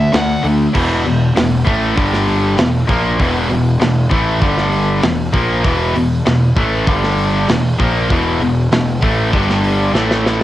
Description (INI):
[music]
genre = hard rock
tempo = 98 BPM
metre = 4/4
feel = straight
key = E minor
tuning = A4 = 440 Hz
[part]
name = distorted electric guitar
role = riff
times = 0.0-10.4 s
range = E2 to A#3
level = -21 LUFS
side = right 7 dB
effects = overdrive, cassette tape
[part]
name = tight distorted guitar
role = riff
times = 0.0-10.4 s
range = E2 to A#3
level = -17 LUFS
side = left 4 dB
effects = distortion, cassette tape
[part]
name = tight distorted guitar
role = riff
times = 0.0-10.4 s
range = E2 to D4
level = -25 LUFS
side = right 1 dB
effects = distortion, cassette tape
[part]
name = fuzz picked electric bass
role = bass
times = 0.0-10.4 s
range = E1 to D2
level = -19 LUFS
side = equal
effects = overdrive
[part]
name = tight metal drum kit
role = drums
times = 0.1-10.4 s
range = crash cymbal, hi-hat, kick drum, snare drum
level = -19 LUFS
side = right 1 dB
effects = cassette tape
[sound]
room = studio ambience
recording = home recording on cassette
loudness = -12 LUFS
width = side -14 dB against mid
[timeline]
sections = 0.8-10.4 A section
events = drum fill 9.9-10.4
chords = 0.0 D5; 0.8 E5; 2.0 G5; 2.6 E5; 4.4 G5; 5.0 E5; 6.9 G5; 7.5 E5; 9.3 G5